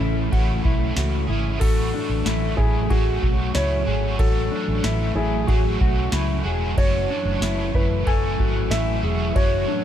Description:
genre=dream pop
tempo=93 BPM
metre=4/4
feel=straight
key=A major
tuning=A4 = 440 Hz
part: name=felt-muted upright piano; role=melody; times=0.0-9.8 s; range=F#4 to E5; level=-28 LUFS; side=equal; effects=digital delay
part: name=cranked stack guitar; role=accompaniment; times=0.0-9.8 s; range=F#2 to G#4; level=-30 LUFS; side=right 4 dB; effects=overdrive, harmonic tremolo, ensemble chorus
part: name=string machine, cellos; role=sustained chords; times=0.0-9.8 s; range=C#3 to G#5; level=-29 LUFS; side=equal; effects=ensemble chorus
part: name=mellow electric guitar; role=arpeggios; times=0.0-9.8 s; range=D4 to G#5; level=-29 LUFS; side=left 6 dB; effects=lush chorus, digital delay
part: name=vintage muted fingered electric bass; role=bass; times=0.0-9.6 s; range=E1 to C#2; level=-24 LUFS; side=equal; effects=none
part: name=booming analog drum machine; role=drums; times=0.3-9.5 s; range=crash cymbal, kick drum, ride cymbal, snare drum, tambourine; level=-21 LUFS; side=equal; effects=none
room=digital ambience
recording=dark, warm production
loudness=-19 LUFS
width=side -10 dB against mid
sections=0.0-1.6 A section; 1.6-9.8 B section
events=none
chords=0.0 Amaj7; 1.6 A6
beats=0.32 0.97 | 1.61 2.26 2.90 3.55 | 4.20 4.84 5.49 6.13 | 6.78 7.42 8.07 8.71 | 9.36

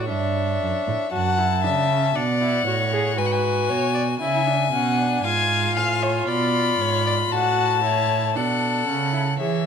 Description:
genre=classical, baroque-style fugue for string quartet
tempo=58 BPM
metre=4/4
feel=straight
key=unclear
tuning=A4 = 440 Hz
part: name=clear violin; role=melody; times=0.0-9.7 s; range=C#5 to Cb6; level=-24 LUFS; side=left 10 dB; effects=none
part: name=warm violin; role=second line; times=0.0-9.7 s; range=A4 to Ab5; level=-25 LUFS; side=left 3 dB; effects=none
part: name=rich viola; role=accompaniment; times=0.0-9.6 s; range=C#4 to G#4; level=-27 LUFS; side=right 3 dB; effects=none
part: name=rich cello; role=bass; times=0.0-9.7 s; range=F#2 to E3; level=-25 LUFS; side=right 5 dB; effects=none
room=moderate recital hall reverb, RT60 1.5 s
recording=close, detailed microphones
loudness=-19 LUFS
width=side -7 dB against mid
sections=0.0-9.4 A section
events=none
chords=0.0 Bm (rootless); 1.1 F#m; 3.2 G#m7b5; 5.2 Fdim7/Ab; 7.3 F#m/A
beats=0.10 | 1.13 2.15 3.18 4.21 | 5.24 6.28 7.32 8.36 | 9.40

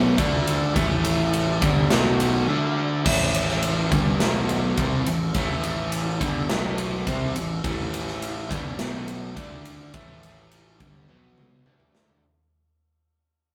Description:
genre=hard rock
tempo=105 BPM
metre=4/4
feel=straight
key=A dorian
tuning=A4 = 440 Hz
part: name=overdriven semi-hollow guitar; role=riff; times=0.0-12.2 s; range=G2 to D4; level=-27 LUFS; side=equal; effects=none
part: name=fuzz fingered electric bass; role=bass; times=0.0-12.2 s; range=G1 to D2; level=-33 LUFS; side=equal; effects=overdrive
part: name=big rock drum kit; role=drums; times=0.2-12.2 s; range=crash cymbal, kick drum, ride cymbal, snare drum, toms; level=-28 LUFS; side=equal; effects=none
room=light reverb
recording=rough rehearsal-room recording, tube saturation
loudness=-23 LUFS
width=mono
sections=0.0-3.1 A section; 3.1-12.2 A section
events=break 2.5-3.1; fade-out 3.1-12.2; drum fill 11.1-12.2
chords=0.2 D5; 0.8 A5; 1.9 B5; 2.5 D5; 3.1 A5; 4.2 B5; 4.8 Am; 6.5 B5; 7.1 Am; 8.8 B5; 9.4 D5; 9.9 A5; 11.1 B5; 11.7 D5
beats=0.19 | 0.76 1.34 1.91 2.48 | 3.06 3.63 4.20 4.78 | 5.35 5.92 6.50 7.07 | 7.64 8.21 8.79 9.36 | 9.94 10.51 11.09 11.66

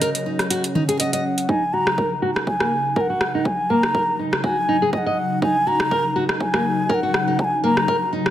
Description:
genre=afro house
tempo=122 BPM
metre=4/4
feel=swing 55% on 16ths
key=Eb minor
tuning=A4 = 440 Hz
part: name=mellow bansuri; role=melody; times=0.0-8.1 s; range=Eb5 to Bb5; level=-22 LUFS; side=left 1 dB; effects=dub echo
part: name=warm analog pad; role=sustained chords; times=0.0-8.3 s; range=Db3 to Eb4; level=-27 LUFS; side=left 1 dB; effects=chorus, sidechain pumping
part: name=nylon-string guitar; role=arpeggios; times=0.0-8.2 s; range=Bb3 to Eb5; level=-24 LUFS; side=right 1 dB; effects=sidechain pumping, low-pass filter, dub echo
part: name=afro-pop drum kit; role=drums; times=0.0-8.3 s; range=hi-hat, rim click, toms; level=-24 LUFS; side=equal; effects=small room ambience
part: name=electronic kick drum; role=drums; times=1.5-8.0 s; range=none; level=-27 LUFS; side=equal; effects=high-pass filter on kick, small room ambience
room=moderate plate reverb, RT60 1.6 s, digital ambience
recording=none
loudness=-18 LUFS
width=side -11 dB against mid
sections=0.0-1.5 A section; 1.5-8.3 B section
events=filter sweep on drum 0.0-1.5; filter sweep on analog synth pad 0.0-1.5, 1.5-8.3; build-up 1.5-8.3; filter sweep on nylon-string guitar 1.5-8.3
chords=0.0 Ebm7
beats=0.01 0.51 1.00 | 1.49 1.98 2.47 2.97 | 3.46 3.95 4.44 4.93 | 5.42 5.92 6.41 6.90 | 7.39 7.88

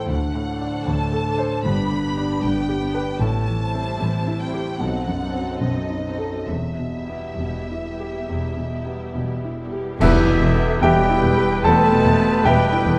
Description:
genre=classical, romantic movement for piano and orchestra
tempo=66-78 BPM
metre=4/4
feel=rubato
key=E minor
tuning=A4 = 439 Hz
part: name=clear baby grand piano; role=melody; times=0.0-13.0 s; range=B1 to A5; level=-24 LUFS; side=equal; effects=none
part: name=warm symphonic violin section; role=melody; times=0.0-12.9 s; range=B3 to B5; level=-35 LUFS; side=equal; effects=none
part: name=rich symphonic violin section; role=second line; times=0.0-13.0 s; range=D#4 to A5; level=-36 LUFS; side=equal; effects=none
part: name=dark symphonic viola section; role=accompaniment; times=0.0-13.0 s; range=F#3 to B4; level=-33 LUFS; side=equal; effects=none
part: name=dark symphonic cello section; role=bass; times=0.1-12.9 s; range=D2 to B2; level=-30 LUFS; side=equal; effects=none
part: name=rich chamber double bass section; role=bass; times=0.1-12.9 s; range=E1 to D2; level=-30 LUFS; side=equal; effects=none
part: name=cymbal swell, clash cymbals and concert bass drum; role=percussion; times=6.5-11.6 s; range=none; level=-29 LUFS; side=equal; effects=none
part: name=mellow clarinet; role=second line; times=10.0-13.0 s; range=E4 to A4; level=-30 LUFS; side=equal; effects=none
part: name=silver concert flute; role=second line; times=10.0-13.0 s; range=E5 to A5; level=-31 LUFS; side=equal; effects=none
part: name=warm oboe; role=second line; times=10.0-13.0 s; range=G4 to C5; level=-30 LUFS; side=equal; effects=none
part: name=dark French horn section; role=sustained chords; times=10.0-13.0 s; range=E3 to A3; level=-26 LUFS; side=equal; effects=none
part: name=mellow trombone section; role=sustained chords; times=10.0-11.9 s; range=G3 to B3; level=-33 LUFS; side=equal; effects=none
part: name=timpani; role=percussion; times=10.0-11.2 s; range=E2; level=-30 LUFS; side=equal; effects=none
room=wet scoring stage reverb, RT60 1.4 s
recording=dark, warm production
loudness=-21 LUFS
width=mono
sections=0.0-10.0 A section; 10.0-13.0 B section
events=band accent 10.0-10.8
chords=0.1 D7; 1.7 G; 3.2 Am7; 4.8 B7b9; 6.5 Em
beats=| 0.09 0.86 1.65 2.43 | 3.20 4.00 4.80 5.61 | 6.49 7.40 8.29 9.15 | 10.00 10.81 11.64 12.45

